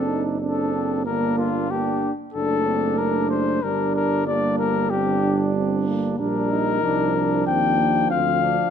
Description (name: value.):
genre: classical, brass quintet.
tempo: 94 BPM.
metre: 4/4.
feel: rubato.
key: G minor.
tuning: A4 = 440 Hz.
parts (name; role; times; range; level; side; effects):
mellow cornet; melody; 0.0-8.7 s; F4 to G5; -23 LUFS; left 8 dB; none.
mellow flugelhorn; second line; 0.0-8.7 s; C4 to Eb4; -28 LUFS; right 8 dB; none.
dark euphonium; accompaniment; 0.0-8.7 s; F3 to C4; -27 LUFS; right 5 dB; none.
mellow French horn; accompaniment; 0.0-8.7 s; Bb3 to Eb4; -27 LUFS; left 3 dB; none.
warm tuba; bass; 0.0-8.6 s; F#1 to Eb2; -27 LUFS; right 4 dB; none.
room: moderate recital hall reverb, RT60 1.5 s.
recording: close, detailed microphones.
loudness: -19 LUFS.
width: side -8 dB against mid.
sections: 0.0-8.7 A section.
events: none.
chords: 0.0 D7/F#; 1.1 Gm; 2.3 D/F#; 3.6 Gm; 6.2 Gm/Bb.